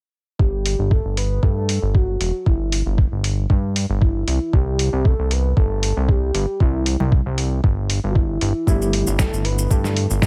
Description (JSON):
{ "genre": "nu-disco, nu disco", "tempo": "116 BPM", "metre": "4/4", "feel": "straight", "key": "G major", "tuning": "A4 = 440 Hz", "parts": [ { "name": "soft octave-layered synth lead", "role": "melody", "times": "0.4-10.3 s", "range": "E4 to B4", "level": "-28 LUFS", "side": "equal", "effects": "chorus, tremolo, digital delay" }, { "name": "fat analog bass", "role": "bass", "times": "0.4-10.3 s", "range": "E1 to G2", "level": "-23 LUFS", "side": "equal", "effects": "sidechain pumping" }, { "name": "electronic kick drum", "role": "drums", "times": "0.4-10.3 s", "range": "none", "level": "-19 LUFS", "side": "equal", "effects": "none" }, { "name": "dusty soul sampler-style drum kit", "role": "drums", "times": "0.7-10.3 s", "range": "hi-hat, snare drum", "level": "-28 LUFS", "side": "equal", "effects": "none" }, { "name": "congas and maracas", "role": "percussion", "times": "7.0-10.3 s", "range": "none", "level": "-31 LUFS", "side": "equal", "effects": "none" }, { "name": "overdriven reed electric piano", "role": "accompaniment", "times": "8.7-10.3 s", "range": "D3 to E4", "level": "-28 LUFS", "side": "equal", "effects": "fast tremolo, sidechain pumping" } ], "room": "digital ambience", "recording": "none", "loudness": "-20 LUFS", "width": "mono", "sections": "0.4-10.3 A section", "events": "none", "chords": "0.4 Gsus2; 4.3 C; 8.7 G69" }